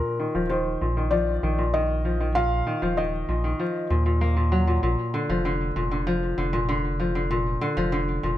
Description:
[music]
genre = folktronica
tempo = 97 BPM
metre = 4/4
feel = straight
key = unclear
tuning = A4 = 440 Hz
[part]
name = felt-muted upright piano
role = melody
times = 0.0-3.9 s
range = Bb4 to F5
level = -28 LUFS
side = left 1 dB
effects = ping-pong delay
[part]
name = kora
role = arpeggios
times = 0.0-8.4 s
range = Bb2 to Bb3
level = -25 LUFS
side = left 1 dB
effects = low-pass filter, ping-pong delay
[part]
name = round analog bass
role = bass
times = 0.3-8.4 s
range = Eb1 to Eb2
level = -26 LUFS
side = equal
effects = none
[sound]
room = light reverb, small room ambience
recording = vinyl crackle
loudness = -22 LUFS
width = side -13 dB against mid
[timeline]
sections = 0.0-8.4 A section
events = filter sweep on kora 0.0-8.4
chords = 0.0 Ebsus2; 4.8 Bb

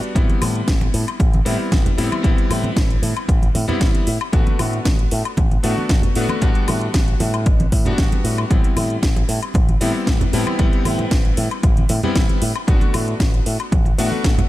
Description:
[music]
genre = nu-disco, nu disco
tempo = 115 BPM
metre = 4/4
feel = straight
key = A dorian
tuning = A4 = 440 Hz
[part]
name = clear electric grand piano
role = accompaniment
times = 0.0-14.5 s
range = G3 to F#4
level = -24 LUFS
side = left 2 dB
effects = analog chorus, ping-pong delay
[part]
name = house drum kit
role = drums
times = 0.0-14.5 s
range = hi-hat, snare drum, woodblock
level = -26 LUFS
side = left 1 dB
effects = overdrive
[part]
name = picked electric bass with an envelope filter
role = bass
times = 0.2-14.3 s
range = A1 to A2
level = -22 LUFS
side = equal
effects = sidechain pumping
[part]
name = electronic kick drum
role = drums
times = 0.2-14.4 s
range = none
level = -17 LUFS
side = equal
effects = overdrive
[part]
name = congas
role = percussion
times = 0.3-14.5 s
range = none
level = -26 LUFS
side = right 2 dB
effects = none
[sound]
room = little or no reverb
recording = none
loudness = -16 LUFS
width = side -16 dB against mid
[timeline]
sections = 0.0-14.5 A section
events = none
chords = 0.2 Am7; 4.1 Bm7/A; 6.4 A13sus4; 8.5 Am7; 12.4 Bm7/A

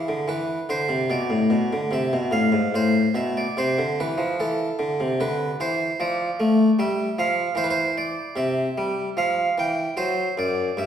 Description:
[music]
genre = classical, baroque-style suite movement for harpsichord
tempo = 74 BPM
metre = 3/4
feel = rubato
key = A minor, C major from 5.2 s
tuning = A4 = 439 Hz
[part]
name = harpsichord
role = solo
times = 0.0-10.9 s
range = F#2 to G5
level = -21 LUFS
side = equal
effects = none
[sound]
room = wet recital hall reverb, RT60 1.3 s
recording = recorded in a church or concert hall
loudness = -21 LUFS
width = side -9 dB against mid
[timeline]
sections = 0.0-10.9 A section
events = none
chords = 0.3 E7(no3); 2.8 Am; 5.2 Dm; 6.8 Fsus2; 7.6 C/E; 9.2 Em; 10.0 N.C.

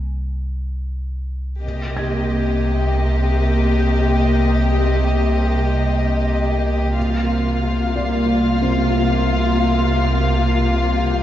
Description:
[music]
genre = cinematic, suspense film score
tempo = free time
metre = none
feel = none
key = C minor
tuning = A4 = 440 Hz
[part]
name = deep rumbling drone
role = drone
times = 0.0-11.2 s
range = C2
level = -23 LUFS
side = equal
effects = built-in reverb
[part]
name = warm chamber violin section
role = melody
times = 1.6-11.2 s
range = Eb5 to F5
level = -27 LUFS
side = left 3 dB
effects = none
[part]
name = warm chamber violin section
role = second line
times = 1.6-11.2 s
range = F4 to G4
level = -24 LUFS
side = left 4 dB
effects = none
[part]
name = dark studio viola section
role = accompaniment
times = 1.6-11.2 s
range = Bb3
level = -22 LUFS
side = right 1 dB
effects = none
[part]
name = dark chamber cello section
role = bass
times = 1.6-11.2 s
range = C3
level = -26 LUFS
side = right 2 dB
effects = none
[part]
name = dark chamber double bass section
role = bass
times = 1.6-11.2 s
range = C2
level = -22 LUFS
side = right 1 dB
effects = none
[part]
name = felt-muted upright piano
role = texture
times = 2.0-11.2 s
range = C4 to Ab6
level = -31 LUFS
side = left 2 dB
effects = none
[sound]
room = wet concert hall reverb, RT60 2.0 s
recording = heard from further back in the room, nothing above 7.6 kHz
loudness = -16 LUFS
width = side -12 dB against mid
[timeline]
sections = 0.0-1.6 A section; 1.6-11.2 B section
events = break 0.0-1.6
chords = 0.0 N.C.; 1.6 Cm7

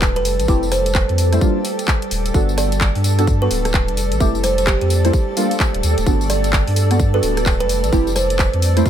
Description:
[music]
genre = UK garage, two-step garage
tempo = 129 BPM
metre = 4/4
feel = swing 62% on 16ths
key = unclear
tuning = A4 = 440 Hz
[part]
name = airy breathy pad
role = sustained chords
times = 0.0-8.9 s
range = G3 to A5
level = -29 LUFS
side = right 4 dB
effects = chorus, sidechain pumping
[part]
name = deep mellow chord stab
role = stabs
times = 0.0-8.9 s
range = G3 to C5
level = -22 LUFS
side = right 1 dB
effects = chorus, phaser
[part]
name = saturated sub bass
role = bass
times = 0.0-8.8 s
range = D1 to G2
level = -19 LUFS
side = equal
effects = none
[part]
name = electronic kick drum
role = drums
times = 0.0-8.9 s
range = none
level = -18 LUFS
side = equal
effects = none
[part]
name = garage drum kit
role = drums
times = 0.0-8.9 s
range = handclaps, hi-hat, rim click, tambourine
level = -24 LUFS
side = left 1 dB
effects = none
[part]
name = granular cloud pad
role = texture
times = 0.0-8.9 s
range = A4 to G5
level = -26 LUFS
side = right 1 dB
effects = built-in reverb, sidechain pumping
[part]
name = buzzing kalimba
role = melody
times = 0.2-8.6 s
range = G4 to D5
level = -23 LUFS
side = right 3 dB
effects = ping-pong delay
[sound]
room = little or no reverb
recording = none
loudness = -15 LUFS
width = side -10 dB against mid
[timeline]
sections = 0.0-8.9 A section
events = none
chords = 0.3 Fmaj9; 1.4 Ebmaj9; 2.3 Gmaj9; 4.0 Fmaj9; 5.1 Ebmaj9; 6.1 Gmaj9; 7.7 Fmaj9

